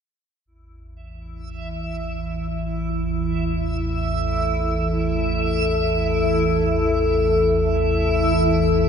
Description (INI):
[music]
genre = dark ambient drone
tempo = free time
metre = none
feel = none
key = unclear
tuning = A4 = 441 Hz
[part]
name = deep dark ambient pad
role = sustained chords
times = 1.6-8.9 s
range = E3 to E5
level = -22 LUFS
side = equal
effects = chorus, built-in reverb
[part]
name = deep rumbling drone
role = drone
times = 0.9-8.9 s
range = A1 to E2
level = -25 LUFS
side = equal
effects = built-in reverb, ensemble chorus
[part]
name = backwards swelling texture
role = texture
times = 1.5-8.9 s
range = E4 to E5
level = -25 LUFS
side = equal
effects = built-in reverb, wide subtle chorus
[sound]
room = wet lush hall reverb, RT60 2.6 s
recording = dreamy mix soaked in reverb, nothing above 10.3 kHz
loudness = -19 LUFS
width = side -7 dB against mid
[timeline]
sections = 0.5-8.9 A section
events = none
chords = 0.5 A5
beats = free time